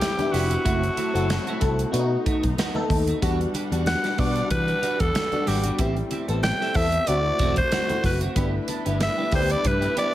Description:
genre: polished 1980s jazz-funk pop.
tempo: 93 BPM.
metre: 4/4.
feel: swing 54% on 16ths.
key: G major.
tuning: A4 = 440 Hz.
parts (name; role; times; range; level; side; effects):
growling alto saxophone; melody; 0.0-10.1 s; F#4 to G5; -26 LUFS; equal; none.
FM electric piano; accompaniment; 0.0-10.1 s; G3 to A4; -28 LUFS; left 2 dB; ensemble chorus.
warm studio string section; sustained chords; 0.0-10.1 s; C3 to F#5; -34 LUFS; equal; none.
clean electric guitar; riff; 0.0-10.1 s; G3 to A4; -33 LUFS; right 4 dB; analog chorus.
modern studio drum kit; drums; 0.0-10.1 s; hi-hat, kick drum, snare drum; -27 LUFS; equal; gated reverb.
congas; percussion; 0.0-10.1 s; none; -37 LUFS; right 2 dB; none.
fingered electric bass; bass; 0.3-9.9 s; E1 to E3; -26 LUFS; equal; none.
room: light reverb, small room ambience.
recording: none.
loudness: -21 LUFS.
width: side -13 dB against mid.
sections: 0.0-10.1 A section.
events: none.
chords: 0.0 Cmaj7; 0.7 F#m7b5; 1.9 B7; 3.2 Em9; 5.8 Am7; 7.1 D7; 8.4 G6.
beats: 0.01 | 0.65 1.30 1.94 2.58 | 3.22 3.87 4.51 5.15 | 5.79 6.43 7.08 7.72 | 8.36 9.00 9.64.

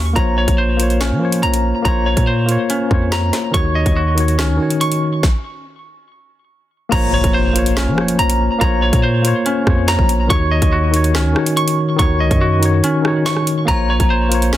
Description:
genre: hip hop, drill.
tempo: 142 BPM.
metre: 4/4.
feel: half-time.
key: Bb minor.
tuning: A4 = 440 Hz.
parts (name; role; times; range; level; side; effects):
clean electric guitar; arpeggios; 0.0-14.6 s; Db4 to Db6; -20 LUFS; right 1 dB; tremolo, tape echo.
long sustained 808-style bass; bass; 0.0-14.6 s; Bb1 to F3; -17 LUFS; equal; none.
tine electric piano; accompaniment; 0.1-14.6 s; Eb3 to Db5; -18 LUFS; left 1 dB; medium stereo tremolo.
drill drum kit; drums; 0.2-14.6 s; crash cymbal, hi-hat, kick drum, rim click, snare drum; -18 LUFS; equal; none.
impact; sound effects; 6.9-8.6 s; none; -26 LUFS; equal; none.
metallic FM bell; second line; 13.7-14.6 s; Bb5; -24 LUFS; equal; chorus, tape echo.
room: little or no reverb.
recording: dense, heavily limited modern master.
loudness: -13 LUFS.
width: side -13 dB against mid.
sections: 0.0-6.9 A section; 6.9-14.6 B section.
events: stop 5.2-6.9; impact 6.9-8.6; break 12.8-13.7.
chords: 0.2 Bbmadd9; 3.5 Ebm7; 6.9 Bbmadd9; 10.3 Ebm7; 13.7 Bbmadd9.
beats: | 0.16 0.58 1.01 1.43 | 1.85 2.27 2.70 3.12 | 3.54 3.96 4.39 4.81 | 5.23 5.66 6.08 6.50 | 6.92 7.34 7.77 8.19 | 8.61 9.04 9.46 9.88 | 10.30 10.72 11.15 11.57 | 11.99 12.41 12.84 13.26 | 13.68 14.11 14.53.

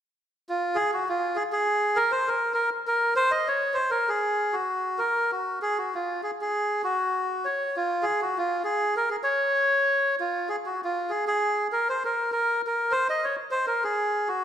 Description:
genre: alpine folk.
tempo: 99 BPM.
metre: 2/4.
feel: swing 55% on 8ths, rubato.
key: unclear.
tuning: A4 = 441 Hz.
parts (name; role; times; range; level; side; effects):
melodica; solo; 0.5-14.4 s; F4 to Eb5; -23 LUFS; equal; none.
room: wet scoring stage reverb, RT60 1.8 s.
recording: recorded in a church or concert hall.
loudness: -23 LUFS.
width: side -9 dB against mid.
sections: 0.8-10.5 A section; 10.5-14.4 A section.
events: none.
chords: none.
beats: 0.14 | 0.75 1.36 | 1.97 2.57 | 3.17 3.77 | 4.38 5.00 | 5.62 6.24 | 6.85 7.45 | 8.05 8.64 | 9.24 9.86 | 10.48 11.09 | 11.70 12.30 | 12.90 13.50 | 14.10.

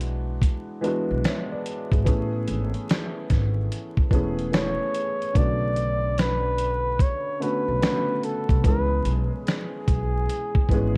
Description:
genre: lo-fi hip hop.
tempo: 73 BPM.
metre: 4/4.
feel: swing 65% on 16ths.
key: B dorian.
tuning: A4 = 440 Hz.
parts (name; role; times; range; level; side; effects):
dark upright piano; accompaniment; 0.0-11.0 s; C#3 to E5; -32 LUFS; equal; low-pass filter.
upright bass; bass; 0.0-11.0 s; E1 to C#2; -29 LUFS; equal; none.
dusty soul sampler-style drum kit; drums; 0.0-10.9 s; finger snaps, hi-hat, kick drum, snare drum; -25 LUFS; equal; vintage 12-bit sampler grit.
breathy flugelhorn; melody; 4.5-11.0 s; G#4 to D5; -30 LUFS; equal; low-pass filter, analog delay.
room: light reverb, studio reverb.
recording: vinyl crackle.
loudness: -24 LUFS.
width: mono.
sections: 0.0-11.0 A section.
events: none.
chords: 0.0 E9/B; 2.1 Amaj9; 5.3 Bm7; 8.6 C#m7.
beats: 0.42 1.24 | 2.06 2.88 3.71 4.53 | 5.35 6.17 6.99 7.82 | 8.64 9.46 10.28.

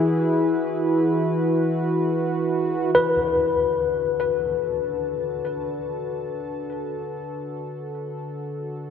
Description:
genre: ambient.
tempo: free time.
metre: none.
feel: none.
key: D lydian.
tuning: A4 = 436 Hz.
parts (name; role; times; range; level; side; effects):
warm analog pad; sustained chords; 0.0-8.9 s; D3 to A5; -24 LUFS; equal; chorus.
tine electric piano; arpeggios; 2.9-8.9 s; B4; -23 LUFS; left 5 dB; medium tremolo, tape echo.
room: wet cathedral reverb, RT60 5.8 s.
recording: in a vast, echoing space.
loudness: -22 LUFS.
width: side -7 dB against mid.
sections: 0.0-2.9 A section; 2.9-8.9 B section.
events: fade-in on analog synth pad 2.9-8.9.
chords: 0.0 Eadd9; 2.9 D.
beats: free time.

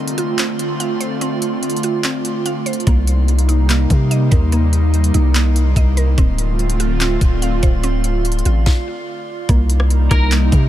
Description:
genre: hip hop, atmospheric cloud-rap.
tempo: 145 BPM.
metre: 4/4.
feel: half-time.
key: C dorian.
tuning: A4 = 440 Hz.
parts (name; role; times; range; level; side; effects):
airy breathy pad; sustained chords; 0.0-10.7 s; C3 to F4; -21 LUFS; right 1 dB; chorus, sidechain pumping.
mallet-like synth pluck; arpeggios; 0.0-10.7 s; Bb3 to F5; -27 LUFS; right 4 dB; chorus, low-pass filter, ping-pong delay.
drifting glass-harmonics texture; texture; 0.0-10.7 s; Eb4 to C6; -31 LUFS; right 2 dB; chorus, built-in reverb.
trap drum kit; drums; 0.1-10.6 s; handclaps, hi-hat, kick drum, rim click, snare drum; -18 LUFS; equal; none.
long sustained 808-style bass; bass; 2.9-10.7 s; D1 to C3; -15 LUFS; equal; none.
electric guitar at the edge of break-up; melody; 10.1-10.3 s; Bb4; -22 LUFS; left 1 dB; analog chorus, low-pass filter, ping-pong delay.
room: little or no reverb.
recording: none.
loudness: -14 LUFS.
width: side -12 dB against mid.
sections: 0.0-9.5 A section; 9.5-10.7 B section.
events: break 0.0-2.9; stop 8.7-9.5.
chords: 0.0 Dm7; 2.9 Cm7; 6.2 Dm7; 9.5 Cm7.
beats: 0.39 0.80 | 1.21 1.63 2.04 2.46 | 2.87 3.28 3.70 4.11 | 4.52 4.94 5.35 5.76 | 6.18 6.59 7.01 7.42 | 7.83 8.25 8.66 9.07 | 9.49 9.90 10.32.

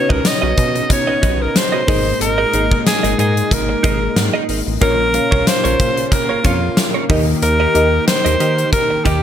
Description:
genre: 1980s-style pop.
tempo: 92 BPM.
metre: 4/4.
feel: swing 55% on 16ths.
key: Eb mixolydian.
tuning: A4 = 440 Hz.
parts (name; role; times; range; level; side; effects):
bright alto saxophone; melody; 0.0-9.2 s; F4 to D#5; -18 LUFS; equal; ping-pong delay.
mellow FM electric piano; accompaniment; 0.0-9.2 s; Ab2 to F5; -22 LUFS; left 2 dB; chorus.
lush unison pad; sustained chords; 0.0-9.2 s; Bb2 to G4; -24 LUFS; equal; chorus.
direct-recorded clean electric guitar; riff; 0.1-9.2 s; C#4 to D#5; -23 LUFS; right 6 dB; analog chorus.
chorused synth bass; bass; 0.1-9.2 s; Ab1 to Eb3; -20 LUFS; equal; none.
gated 80s drum kit; drums; 0.1-9.2 s; hi-hat, kick drum, snare drum, tambourine; -18 LUFS; left 1 dB; none.
room: small room ambience.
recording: none.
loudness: -13 LUFS.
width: side -9 dB against mid.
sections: 0.0-9.2 A section.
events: none.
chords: 0.0 Badd9; 1.9 Absus2; 4.8 Bbm; 7.1 Eb.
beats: 0.25 0.90 1.55 | 2.21 2.86 3.51 4.16 | 4.82 5.47 6.12 6.77 | 7.42 8.08 8.73.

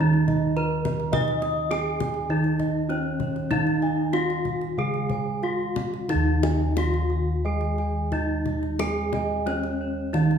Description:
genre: Javanese gamelan.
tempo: 89-105 BPM.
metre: 4/4.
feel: straight.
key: Eb slendro.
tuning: A4 = 441 Hz.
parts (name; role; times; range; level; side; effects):
gamelan-type bronze metallophone; melody; 0.0-10.4 s; Db4-45c to Eb5; -27 LUFS; right 1 dB; none.
gamelan-type bronze metallophone; accompaniment; 0.0-10.4 s; Eb3 to Eb4; -31 LUFS; right 5 dB; none.
gamelan-type bossed gongs; arpeggios; 0.0-10.4 s; Db5-45c to Bb5+25c; -35 LUFS; left 3 dB; none.
gamelan-type bronze metallophone; arpeggios; 0.0-10.4 s; Db5-45c to Eb6; -35 LUFS; right 6 dB; none.
gamelan-type bossed gongs; bass; 0.0-10.4 s; Eb2 to Eb5; -27 LUFS; left 1 dB; none.
kendang; percussion; 0.1-10.4 s; none; -33 LUFS; left 5 dB; none.
room: moderate recital hall reverb, RT60 1.6 s.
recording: studio reverb.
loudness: -22 LUFS.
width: side -7 dB against mid.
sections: 0.0-6.1 A section; 6.1-10.4 B section.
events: none.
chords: none.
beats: 0.56 | 1.14 1.71 2.30 2.90 | 3.51 4.14 4.78 5.43 | 6.09 6.77 7.44 8.12 | 8.79 9.46 10.14.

